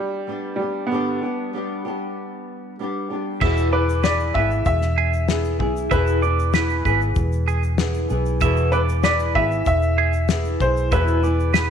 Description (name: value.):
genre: acoustic pop.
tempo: 96 BPM.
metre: 4/4.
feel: straight.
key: unclear.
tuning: A4 = 440 Hz.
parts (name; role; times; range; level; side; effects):
clear upright piano; melody; 0.0-11.7 s; G3 to E5; -25 LUFS; left 1 dB; none.
flamenco guitar; accompaniment; 0.0-11.7 s; E2 to G#4; -25 LUFS; equal; double-tracked left and right.
twelve-string electric guitar; arpeggios; 3.4-11.7 s; G#4 to E5; -24 LUFS; right 11 dB; none.
vintage muted fingered electric bass; bass; 3.4-11.7 s; E1 to B1; -21 LUFS; equal; none.
cloth-damped thuddy drum kit; drums; 3.4-11.7 s; crash cymbal, kick drum, shaker, snare drum; -24 LUFS; left 4 dB; none.
room: light reverb, studio reverb.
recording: 1960s-style stereo.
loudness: -18 LUFS.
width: side -8 dB against mid.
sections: 0.0-3.4 A section; 3.4-11.7 B section.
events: none.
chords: 0.0 G; 3.4 E.